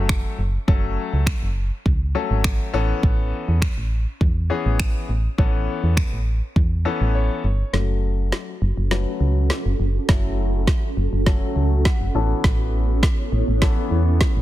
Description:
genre	dance-pop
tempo	102 BPM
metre	4/4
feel	straight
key	F# minor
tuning	A4 = 441 Hz
part	clear concert grand piano	accompaniment	0.0-14.4 s	E3 to A5	-27 LUFS	left 6 dB	sidechain pumping, low-pass filter
part	solid FM bass	bass	0.0-14.4 s	F#1 to E2	-21 LUFS	equal	sidechain pumping
part	deep house drum kit	drums	0.1-14.4 s	finger snaps, kick drum, snare drum	-20 LUFS	equal	soft clipping on snare
part	granular cloud pad	sustained chords	8.5-14.4 s	B3 to C#5	-28 LUFS	right 2 dB	built-in reverb, sidechain pumping, low-pass filter
room	little or no reverb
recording	dense, heavily limited modern master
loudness	-18 LUFS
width	side -15 dB against mid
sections	0.0-7.7 A section; 7.7-14.4 B section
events	grand piano fill 6.6-7.7, 11.6-12.4; break 7.1-7.7; build-up 7.7-14.4; drum fill 7.7-14.4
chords	0.0 F#m; 2.7 Aadd9; 7.7 F#m; 12.1 Aadd9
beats	0.09 | 0.68 1.27 1.85 2.44 | 3.03 3.62 4.21 4.80 | 5.38 5.97 6.56 7.15 | 7.74 8.33 8.91 9.50 | 10.09 10.68 11.27 11.86 | 12.44 13.03 13.62 14.21

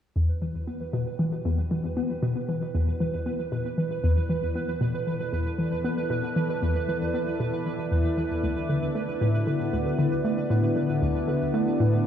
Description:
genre	ambient, sequencer-driven space music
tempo	116 BPM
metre	4/4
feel	straight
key	unclear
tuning	A4 = 441 Hz
part	lush unison pad	sustained chords	0.2-12.1 s	D3 to D5	-30 LUFS	left 1 dB	chorus
part	hollow square pluck	riff	0.2-11.9 s	D2 to B3	-26 LUFS	left 1 dB	chorus, tape echo
part	pulsing gated texture	texture	0.2-12.1 s	B4	-33 LUFS	right 7 dB	chorus, built-in reverb
room	wet concert hall reverb, RT60 2.2 s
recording	worn, warbling old tape, cassette tape, warbly pitch drift, studio ambience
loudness	-24 LUFS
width	side -9 dB against mid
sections	0.2-12.1 A section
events	fade-in on analog synth pad 0.2-12.1; filter sweep on synth arpeggio sound 0.2-12.1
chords	0.2 Em7; 8.4 D6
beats	| 0.16 0.68 1.19 1.71 | 2.23 2.74 3.26 3.78 | 4.30 4.81 5.33 5.85 | 6.36 6.88 7.40 7.92 | 8.43 8.95 9.47 9.98 | 10.50 11.02 11.54 12.05

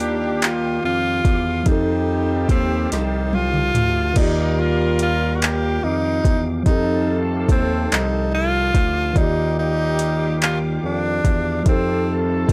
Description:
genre	slow six-eight R&B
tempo	48 BPM (dotted quarters)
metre	6/8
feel	straight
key	Eb major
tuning	A4 = 444 Hz
part	clear tenor saxophone	melody	0.0-12.2 s	C4 to G4	-25 LUFS	equal	none
part	tine electric piano	accompaniment	0.0-12.5 s	Eb3 to D5	-28 LUFS	equal	none
part	bright tonewheel organ	sustained chords	0.0-12.5 s	G4 to D6	-38 LUFS	equal	chorus vibrato, slow rotary speaker
part	clear horn section	stabs	0.0-12.5 s	Eb3 to Bb4	-31 LUFS	equal	none
part	smooth gliding synth bass	bass	0.0-12.5 s	C2 to F2	-25 LUFS	equal	none
part	smooth R&B drum kit	drums	0.4-12.5 s	crash cymbal, handclaps, hi-hat, kick drum, snare drum, toms	-21 LUFS	equal	none
room	little or no reverb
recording	dry, gritty hardware recording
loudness	-20 LUFS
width	mono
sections	0.0-4.2 A section; 4.2-12.5 A section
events	drum fill 2.9-4.2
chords	0.0 Ebmaj9; 1.7 F9; 4.2 Ebmaj9; 6.7 F9; 9.2 Ebmaj9; 11.7 F9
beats	0.41 | 1.66 2.91 | 4.16 5.41 | 6.66 7.91 | 9.16 10.41 | 11.66

